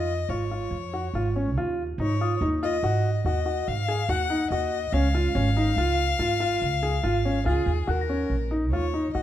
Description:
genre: contemporary instrumental, chamber music in an uneven meter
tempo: 143 BPM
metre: 7/4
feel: straight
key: unclear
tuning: A4 = 440 Hz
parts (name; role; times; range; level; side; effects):
- rich violin; melody; 0.0-9.2 s; Ab4 to Gb5; -29 LUFS; left 6 dB; none
- clear baby grand piano; arpeggios; 0.0-9.2 s; Db4 to Ab4; -27 LUFS; equal; none
- upright bass; bass; 0.0-9.2 s; Ab1 to Ab2; -26 LUFS; right 1 dB; none
- small celesta; texture; 2.2-2.7, 7.9-8.5 s; Eb6 to Bb6; -35 LUFS; left 5 dB; none
room: light reverb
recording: dark, warm production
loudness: -23 LUFS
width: side -12 dB against mid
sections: 0.0-7.9 A section; 7.9-9.2 B section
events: none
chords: 0.0 Db; 2.0 Ab5; 4.9 Db; 7.9 Ebm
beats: 0.31 0.73 1.15 1.57 | 2.00 2.42 2.84 3.26 3.68 4.10 4.52 | 4.94 5.36 5.78 6.20 6.62 7.04 7.46 | 7.88 8.30 8.72 9.14

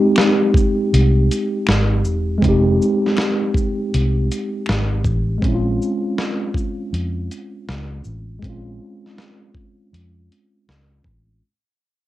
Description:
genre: lo-fi hip hop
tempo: 80 BPM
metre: 4/4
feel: swing 66% on 16ths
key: unclear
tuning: A4 = 440 Hz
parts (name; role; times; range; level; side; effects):
- mellow tine electric piano; accompaniment; 0.0-11.4 s; Ab3 to G4; -20 LUFS; equal; medium stereo tremolo, low-pass filter, cassette tape
- dusty soul sampler-style drum kit; drums; 0.2-11.3 s; hi-hat, kick drum, shaker, snare drum; -21 LUFS; equal; none
- finger snaps; percussion; 0.2-4.9 s; none; -26 LUFS; left 3 dB; none
- vintage muted fingered electric bass; bass; 0.9-11.4 s; E1 to F2; -18 LUFS; equal; none
room: light reverb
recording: home recording on cassette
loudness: -16 LUFS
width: side -14 dB against mid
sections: 0.0-11.4 A section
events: fade-out 0.0-11.4; filter sweep on tine electric piano 0.0-11.4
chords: 0.0 Fm7 (rootless); 5.4 Bbm7 (rootless)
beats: 0.17 0.92 1.67 | 2.42 3.17 3.92 4.67 | 5.42 6.17 6.92 7.67 | 8.42 9.17 9.92 10.67

